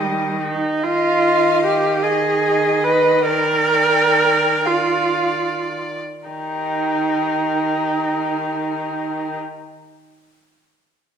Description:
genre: classical, slow romantic movement for string quartet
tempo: 34-51 BPM (dotted quarters)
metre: 6/8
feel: rubato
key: Eb major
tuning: A4 = 440 Hz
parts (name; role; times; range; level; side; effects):
- rich violin; melody; 0.0-9.4 s; Bb4 to G5; -26 LUFS; left 7 dB; none
- rich violin; second line; 0.0-9.4 s; G4 to Eb5; -24 LUFS; left 3 dB; none
- clear viola; accompaniment; 0.0-9.4 s; G3 to Cb5; -18 LUFS; right 3 dB; none
- rich cello; bass; 0.0-9.4 s; Eb3; -28 LUFS; right 5 dB; none
room: wet recital hall reverb, RT60 1.4 s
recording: minimal, uncompressed stereo recording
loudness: -16 LUFS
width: side -7 dB against mid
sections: 0.8-6.3 A section; 6.3-9.3 B section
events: slowing down 0.0-6.3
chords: 0.0 Eb; 0.8 Ab5/Eb; 3.3 Bb/Eb; 6.3 Eb

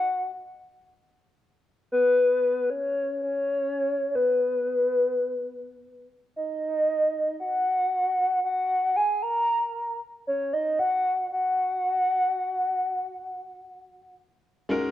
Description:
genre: amapiano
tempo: free time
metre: none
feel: none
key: F# major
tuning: A4 = 440 Hz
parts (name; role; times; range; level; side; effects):
- hollow clarinet-like synth lead; melody; 0.0-14.1 s; B4 to A#5; -23 LUFS; left 1 dB; chorus, analog delay
- warm grand piano; accompaniment; 14.7-14.9 s; G#3 to A#4; -23 LUFS; left 2 dB; none
room: light reverb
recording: dry, gritty hardware recording, cassette tape, small room ambience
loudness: -23 LUFS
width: side -13 dB against mid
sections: 0.0-14.7 A section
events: drop 0.0-14.7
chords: none

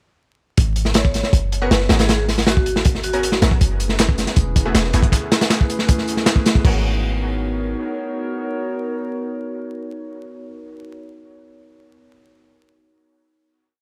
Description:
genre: drum and bass, jungle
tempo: 158 BPM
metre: 4/4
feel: straight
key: G# minor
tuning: A4 = 444 Hz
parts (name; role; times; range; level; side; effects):
- warm 808-style bass; bass; 0.6-7.7 s; E1 to A#1; -23 LUFS; equal; none
- crunchy breakbeat drum kit; drums; 0.6-6.7 s; crash cymbal, hi-hat, kick drum, snare drum; -19 LUFS; equal; none
- vibraphone with hard mallets; melody; 1.0-3.3 s; F#4 to C#5; -28 LUFS; equal; dub echo
- orchestra-hit-like synth stab; stabs; 1.6-10.8 s; A3 to A#4; -32 LUFS; equal; built-in reverb, dub echo
- warbly tape-like pad; sustained chords; 3.7-10.4 s; A3 to C#5; -29 LUFS; equal; chorus, built-in reverb
- dusty soul sampler-style drum kit; drums; 3.6-6.5 s; hi-hat, snare drum, tambourine; -30 LUFS; equal; high-pass filter on perc, high-pass filter on snare, high-pass filter on hats, high-pass filter on room
room: light reverb, small room ambience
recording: vinyl crackle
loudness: -19 LUFS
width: mono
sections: 0.6-6.6 drop; 6.6-9.7 final chord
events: drop 0.6-6.6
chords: 0.6 G#m11; 3.6 F#m11; 6.6 G#m11

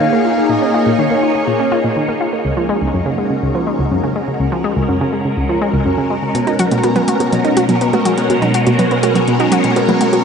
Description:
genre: ambient, sequencer-driven space music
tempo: 123 BPM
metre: 4/4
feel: straight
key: unclear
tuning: A4 = 435 Hz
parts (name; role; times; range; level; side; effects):
- breathy flute-like synth lead; melody; 0.0-2.0 s; C#5 to E#5; -22 LUFS; equal; chorus, tape echo
- phased string machine; sustained chords; 0.0-10.2 s; B2 to C#5; -16 LUFS; equal; ensemble chorus, phaser
- analog pluck; riff; 0.0-10.2 s; C#2 to F#4; -17 LUFS; equal; chorus, tape echo
- electronic hi-hat and congas; percussion; 6.3-10.2 s; none; -24 LUFS; right 1 dB; tape echo
- warbly dusty pluck; arpeggios; 6.5-10.2 s; F#3 to F#4; -18 LUFS; right 2 dB; chorus, auto-pan, tape echo
room: wet huge ambient reverb, RT60 7.5 s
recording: nothing above 11.0 kHz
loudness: -13 LUFS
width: side -6 dB against mid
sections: 0.0-10.2 A section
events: none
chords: 0.0 A#m; 2.4 C#sus4; 6.3 Bmaj7

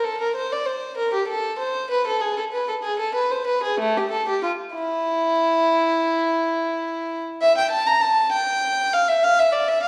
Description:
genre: classical, baroque-style suite movement for unaccompanied violin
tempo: 66 BPM (dotted quarters)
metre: 12/8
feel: rubato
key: unclear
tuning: A4 = 439 Hz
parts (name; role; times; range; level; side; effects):
- dark violin; solo; 0.0-9.9 s; A3 to Bb5; -22 LUFS; equal; none
room: wet recital hall reverb, RT60 1.5 s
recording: recorded in a church or concert hall, vinyl crackle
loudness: -22 LUFS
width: mono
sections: 0.0-9.9 A section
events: none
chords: none

